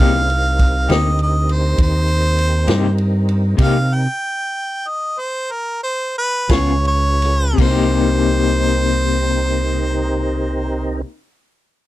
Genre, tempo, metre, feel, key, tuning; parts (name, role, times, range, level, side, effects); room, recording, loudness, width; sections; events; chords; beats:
slow blues; 53-67 BPM (dotted quarters); 12/8; straight; C minor; A4 = 440 Hz
warm harmonica; melody; 0.0-11.0 s; Bb4 to G5; -21 LUFS; right 1 dB
electric guitar through a small old amp; accompaniment; 0.0-11.2 s; C3 to Ab4; -20 LUFS; left 6 dB; tremolo
tonewheel organ; sustained chords; 0.0-11.0 s; C4 to B4; -26 LUFS; right 2 dB; chorus vibrato, slow rotary speaker
fingered electric bass; bass; 0.0-11.0 s; C2 to C3; -17 LUFS; equal
vintage drum kit; drums; 0.0-7.8 s; crash cymbal, kick drum, ride cymbal, snare drum; -17 LUFS; equal
little or no reverb; dry, close 1970s-style studio recording; -15 LUFS; side -15 dB against mid
0.0-7.6 A section; 7.6-11.9 B section
harmonica solo 0.0-7.6; slowing down 2.4-7.6; stop 3.6-6.5
0.0 Cm7; 6.5 Db7; 7.6 Cm7
| 0.00 0.89 1.78 2.68 | 3.58 4.51 5.48 6.50 | 7.58 8.71 9.83 10.96